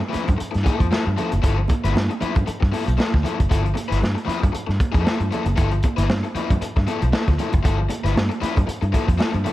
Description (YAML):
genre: funk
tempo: 116 BPM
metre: 4/4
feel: swing 56% on 16ths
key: G mixolydian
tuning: A4 = 440 Hz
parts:
  - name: raw garage guitar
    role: accompaniment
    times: 0.0-9.5 s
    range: F3 to B4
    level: -26 LUFS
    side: left 6 dB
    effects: overdrive
  - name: vintage muted fingered electric bass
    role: bass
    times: 0.1-9.4 s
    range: F#1 to G2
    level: -21 LUFS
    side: equal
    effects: none
  - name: crunchy breakbeat drum kit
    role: drums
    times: 0.1-9.5 s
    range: hi-hat, kick drum, snare drum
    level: -22 LUFS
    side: equal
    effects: none
  - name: congas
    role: percussion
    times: 0.1-9.5 s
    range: none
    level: -30 LUFS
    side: right 6 dB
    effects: none
room: small room ambience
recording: none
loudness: -18 LUFS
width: side -15 dB against mid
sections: 0.0-9.5 A section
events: none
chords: 0.0 G13